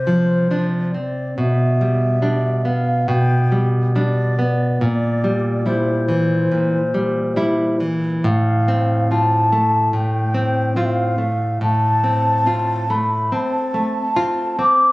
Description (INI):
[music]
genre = romantic duo for flute and classical guitar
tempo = 70 BPM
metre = 4/4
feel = rubato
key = unclear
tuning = A4 = 440 Hz
[part]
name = mellow baroque flute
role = melody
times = 0.0-14.9 s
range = C5 to D6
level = -20 LUFS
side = left 1 dB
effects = tape echo
[part]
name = nylon-string guitar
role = accompaniment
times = 0.0-14.9 s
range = A2 to F4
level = -18 LUFS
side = equal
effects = none
[sound]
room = light reverb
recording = recorded on a phone in the room, club reverb, compression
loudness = -16 LUFS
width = side -21 dB against mid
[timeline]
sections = 0.0-14.9 A section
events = none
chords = 0.0 Dm7/C; 1.4 G/B; 4.8 C7/Bb; 8.2 F/A